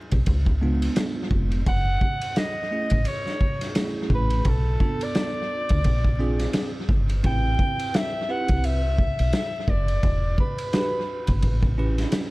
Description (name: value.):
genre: hip hop, jazz-hop.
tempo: 86 BPM.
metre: 4/4.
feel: swing 57% on 16ths.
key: unclear.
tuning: A4 = 441 Hz.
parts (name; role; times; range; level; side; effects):
deep dub fingered electric bass; bass; 0.1-12.0 s; E1 to D2; -23 LUFS; equal; none.
vintage drum kit; drums; 0.1-12.3 s; hi-hat, kick drum, ride cymbal, snare drum; -25 LUFS; equal; none.
bell-like tine electric piano; accompaniment; 0.6-12.3 s; G#3 to B4; -30 LUFS; right 2 dB; phaser, tape echo.
mellow soprano saxophone; melody; 1.7-11.7 s; A4 to G5; -29 LUFS; equal; tape echo.
room: small room ambience.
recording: echo-heavy mix, vinyl crackle.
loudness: -21 LUFS.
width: side -21 dB against mid.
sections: 0.0-12.3 A section.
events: none.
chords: 0.3 C#7b9; 1.7 F#m7; 4.5 Bm7b5; 5.9 A#9; 7.2 Am7 (rootless); 10.0 Em9; 11.4 A9.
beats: 0.27 0.97 | 1.67 2.36 3.06 3.76 | 4.46 5.15 5.85 6.55 | 7.25 7.94 8.64 9.34 | 10.04 10.73 11.43 12.13.